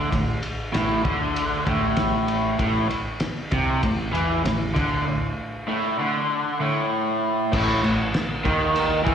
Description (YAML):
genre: garage rock duo or trio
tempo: 97 BPM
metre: 4/4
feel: straight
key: unclear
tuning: A4 = 440 Hz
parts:
  - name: raw garage guitar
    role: riff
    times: 0.0-9.1 s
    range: A2 to E3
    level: -22 LUFS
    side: equal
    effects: overdrive, slapback echo
  - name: growling picked electric bass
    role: bass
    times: 0.0-9.1 s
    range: A1 to E2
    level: -27 LUFS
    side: equal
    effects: overdrive
  - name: cloth-damped thuddy drum kit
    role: drums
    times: 0.1-9.1 s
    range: crash cymbal, kick drum, ride cymbal, snare drum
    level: -27 LUFS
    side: equal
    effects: vintage 12-bit sampler grit
room: moderate club reverb, RT60 0.8 s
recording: live gig heard through the venue's PA, recital hall reverb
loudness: -21 LUFS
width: side -8 dB against mid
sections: 0.0-7.5 A section; 7.5-9.1 B section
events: none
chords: 0.0 A5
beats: | 0.12 0.73 1.35 1.97 | 2.59 3.21 3.82 4.44 | 5.06 5.67 6.29 6.91 | 7.52 8.13 8.75